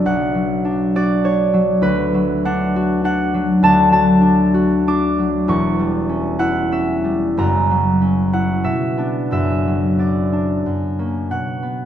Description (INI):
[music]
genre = classical, solo harp piece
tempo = 86-104 BPM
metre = 3/4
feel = rubato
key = B minor from 3.6 s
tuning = A4 = 440 Hz
[part]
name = concert harp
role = solo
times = 0.0-11.9 s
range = E1 to D6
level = -15 LUFS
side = equal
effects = none
[sound]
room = wet recital hall reverb, RT60 1.5 s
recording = none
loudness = -15 LUFS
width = side -10 dB against mid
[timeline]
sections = 0.0-11.3 A section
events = none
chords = 0.1 Bm; 1.8 Bm/D; 5.5 C#dim/E; 7.4 F#7; 8.6 Bm; 9.3 Bm/F#; 10.6 F#; 11.3 B5